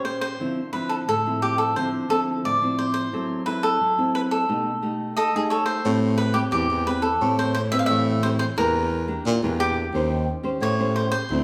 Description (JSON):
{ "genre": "samba and choro", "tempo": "88 BPM", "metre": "4/4", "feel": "straight", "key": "A minor", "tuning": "A4 = 440 Hz", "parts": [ { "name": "cavaquinho", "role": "melody", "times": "0.0-11.4 s", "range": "G4 to F5", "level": "-26 LUFS", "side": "equal", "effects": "none" }, { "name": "nylon-string guitar", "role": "accompaniment", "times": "0.0-11.4 s", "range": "A2 to B#4", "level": "-29 LUFS", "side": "equal", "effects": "none" }, { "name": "mellow baritone saxophone", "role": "bass", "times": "5.8-11.4 s", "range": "D2 to Bb2", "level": "-26 LUFS", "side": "equal", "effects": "none" } ], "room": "wet large studio reverb, RT60 1.2 s", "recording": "band playing live in one room", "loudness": "-23 LUFS", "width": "mono", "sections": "0.0-5.9 A section; 5.9-11.4 B section", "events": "none", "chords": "0.4 Dm9; 3.1 F#m7b5; 4.5 B7b13; 5.9 Am9; 8.6 Em7b5; 9.9 D#6", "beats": "| 0.40 1.08 1.76 2.44 | 3.13 3.81 4.49 5.17 | 5.85 6.53 7.21 7.89 | 8.57 9.26 9.94 10.62 | 11.30" }